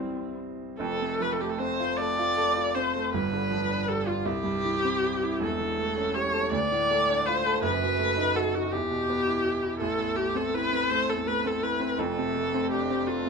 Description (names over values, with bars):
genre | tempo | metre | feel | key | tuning
classical, romantic duo for viola and grand piano | 44-56 BPM (dotted quarters) | 6/8 | rubato | unclear | A4 = 440 Hz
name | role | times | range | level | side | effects
rich viola | melody | 0.0-13.3 s | C4 to D5 | -27 LUFS | left 2 dB | none
clear concert grand piano | accompaniment | 0.0-13.3 s | E1 to A4 | -28 LUFS | right 2 dB | none
room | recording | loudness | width
light reverb | minimal, uncompressed stereo recording | -24 LUFS | side -5 dB against mid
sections
0.8-13.3 A section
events
none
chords
0.0 C; 0.8 F; 3.1 G7; 4.3 C; 5.4 A7/E; 6.5 Dm; 7.6 B7/F#; 8.7 Em; 9.8 Am; 12.0 Dm7/F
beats
| 0.80 1.97 | 3.13 4.25 | 5.41 6.52 | 7.62 8.72 | 9.80 10.89 | 11.98 13.07